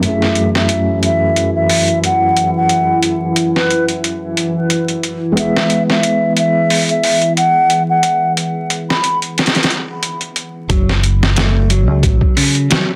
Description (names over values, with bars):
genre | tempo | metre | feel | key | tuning
trip hop | 90 BPM | 4/4 | swing 55% on 16ths | F# minor | A4 = 444 Hz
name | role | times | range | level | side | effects
baroque flute | melody | 0.0-9.2 s | B4 to B5 | -18 LUFS | equal | tape echo
felt-muted upright piano | accompaniment | 0.0-10.7 s | F#2 to G#4 | -22 LUFS | equal | tremolo, vintage 12-bit sampler grit, tape echo
warbly tape-like pad | sustained chords | 0.0-10.7 s | E3 to E4 | -22 LUFS | equal | chorus, built-in reverb, phaser
boom bap sampler-style drum kit | drums | 0.0-12.9 s | hi-hat, kick drum, snare drum | -18 LUFS | equal | high-pass filter on hats, small room ambience, high-pass filter on snare, high-pass filter on kick
electric guitar at the edge of break-up | arpeggios | 10.7-12.9 s | C#3 to A3 | -21 LUFS | equal | tape echo
deep dub fingered electric bass | bass | 10.7-12.2 s | F#1 to C#2 | -16 LUFS | equal | none
room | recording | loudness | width
light reverb | dense, heavily limited modern master, vinyl crackle | -15 LUFS | mono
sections
0.0-10.7 A section; 10.7-13.0 B section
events
none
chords
0.0 F#m7; 5.4 E; 10.7 F#m